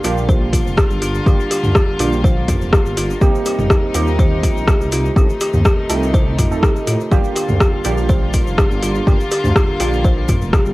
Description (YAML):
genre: afro house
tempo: 123 BPM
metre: 4/4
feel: straight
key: G minor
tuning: A4 = 444 Hz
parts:
  - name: clear studio string section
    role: sustained chords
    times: 0.0-10.7 s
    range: C3 to F4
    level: -25 LUFS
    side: left 2 dB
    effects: sidechain pumping
  - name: kalimba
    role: arpeggios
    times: 0.0-10.6 s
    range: F4 to C5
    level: -22 LUFS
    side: left 1 dB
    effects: sidechain pumping, analog delay
  - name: warm analog keys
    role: stabs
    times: 0.0-10.7 s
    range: A3 to A4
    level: -24 LUFS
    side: right 6 dB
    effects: chorus, sidechain pumping, analog delay
  - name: dark detuned saw bass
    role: bass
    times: 0.0-10.7 s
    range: F1 to A2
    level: -21 LUFS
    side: equal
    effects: sidechain pumping
  - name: deep house drum kit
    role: drums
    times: 0.0-10.6 s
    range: hi-hat, rim click, toms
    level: -20 LUFS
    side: equal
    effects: overdrive, cassette tape
  - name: tube shaker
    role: percussion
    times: 0.0-10.7 s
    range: none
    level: -35 LUFS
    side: left 8 dB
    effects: none
  - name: electronic kick drum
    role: drums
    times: 0.3-10.6 s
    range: none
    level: -15 LUFS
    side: equal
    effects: overdrive, cassette tape
room: light reverb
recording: home recording on cassette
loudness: -13 LUFS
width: side -19 dB against mid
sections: 0.0-10.7 A section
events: none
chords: 0.0 Gm7; 3.2 Cm7; 5.2 Adim; 7.1 Gm7